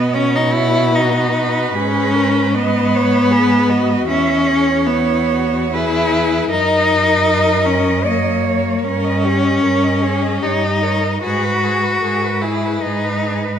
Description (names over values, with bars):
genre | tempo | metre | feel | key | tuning
classical, lyrical piece for cello ensemble | 76 BPM | 3/4 | uneven beats, rubato | unclear | A4 = 441 Hz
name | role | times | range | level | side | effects
rich cello | second line | 0.0-13.6 s | G#4 to E5 | -22 LUFS | right 9 dB | none
rich cello | accompaniment | 0.0-13.6 s | A#3 to F#4 | -16 LUFS | left 2 dB | none
warm cello | bass | 0.0-13.5 s | E2 to B2 | -21 LUFS | right 3 dB | none
warm cello | melody | 0.1-13.6 s | E4 to D#5 | -24 LUFS | left 6 dB | none
room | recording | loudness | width
moderate scoring stage reverb, RT60 1.7 s | none | -14 LUFS | side -8 dB against mid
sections
0.0-13.6 A section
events
none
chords
0.0 B; 1.8 G#m; 4.1 E; 6.5 F#; 8.8 D#7/G; 11.2 G#m7